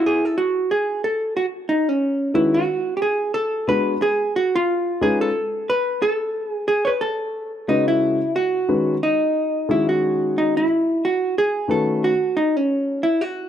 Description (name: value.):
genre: hip hop.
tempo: 90 BPM.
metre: 4/4.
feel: swing 58% on 16ths.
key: F# dorian.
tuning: A4 = 439 Hz.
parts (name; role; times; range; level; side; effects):
vintage hollow-body jazz guitar; melody; 0.0-13.5 s; C#4 to C#5; -19 LUFS; right 1 dB; none.
dark grand piano; accompaniment; 2.3-12.1 s; C#3 to B4; -22 LUFS; left 3 dB; none.
room: moderate plate reverb, RT60 2.6 s.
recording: dark, warm production.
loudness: -18 LUFS.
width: side -10 dB against mid.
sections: 0.7-11.3 A section; 11.3-13.5 A section.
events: none.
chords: 0.0 F#sus2; 3.3 G#m7b5; 4.7 C#7; 6.0 F#m69; 11.3 F#m6.